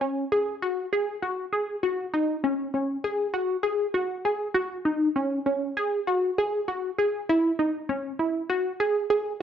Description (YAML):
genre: progressive instrumental, progressive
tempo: 198 BPM (eighths)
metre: 9/8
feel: straight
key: unclear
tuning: A4 = 438 Hz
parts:
  - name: tight sequenced synth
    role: solo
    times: 0.0-9.3 s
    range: C#4 to G#4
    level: -24 LUFS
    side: equal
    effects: chorus, phaser
room: wet studio reverb, RT60 0.9 s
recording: worn, warbling old tape, cassette tape, warbly pitch drift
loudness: -24 LUFS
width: side -8 dB against mid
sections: 0.0-7.3 A section; 7.3-9.4 B section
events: none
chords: none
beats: 0.02 0.32 0.62 0.93 1.23 1.53 | 1.83 2.14 2.44 2.74 3.04 3.35 3.65 3.95 4.25 | 4.56 4.86 5.16 5.46 5.77 6.07 6.37 6.67 6.98 | 7.28 7.58 7.88 8.19 8.49 8.79 9.09